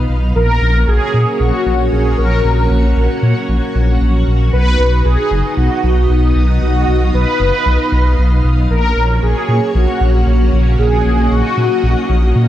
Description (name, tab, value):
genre	synthwave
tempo	115 BPM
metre	4/4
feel	straight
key	F# major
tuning	A4 = 440 Hz
part	mellow synth brass	melody	0.0-12.5 s	F#4 to B4	-18 LUFS	equal	chorus, phaser, shimmer reverb, tape echo
part	string machine, full ensemble	sustained chords	0.0-12.5 s	A#3 to E#5	-20 LUFS	equal	ensemble chorus, shimmer reverb
part	dark detuned saw bass	bass	0.0-12.5 s	F#1 to A#2	-13 LUFS	equal	none
room	light reverb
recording	dark, warm production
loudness	-11 LUFS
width	side -12 dB against mid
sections	0.0-12.5 A section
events	none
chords	0.4 F#/A#; 4.5 B; 8.7 F#/A#